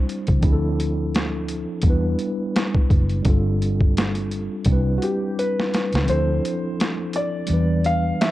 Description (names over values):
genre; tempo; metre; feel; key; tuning
lo-fi hip hop; 85 BPM; 4/4; swing 57% on 16ths; D dorian; A4 = 440 Hz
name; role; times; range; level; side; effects
mellow tine electric piano; accompaniment; 0.0-8.3 s; E3 to C5; -25 LUFS; equal; medium stereo tremolo
boom bap sampler-style drum kit; drums; 0.1-8.3 s; hi-hat, kick drum, snare drum; -20 LUFS; equal; overdrive
vintage muted fingered electric bass; bass; 0.3-8.1 s; F#1 to E2; -22 LUFS; equal; none
felt-muted upright piano; melody; 5.0-8.3 s; F#4 to F5; -25 LUFS; left 1 dB; none
room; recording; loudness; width
little or no reverb; cassette tape; -19 LUFS; side -15 dB against mid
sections
0.0-6.1 A section; 6.1-8.3 B section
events
drum fill 5.4-6.1; kick muted 6.1-8.3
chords
0.4 Dm9; 1.8 Em7; 3.3 G9sus4; 4.7 Cmaj9; 6.1 Dm9; 7.5 Em7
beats
| 0.43 1.14 1.84 2.55 | 3.25 3.96 4.67 5.37 | 6.08 6.78 7.49 8.19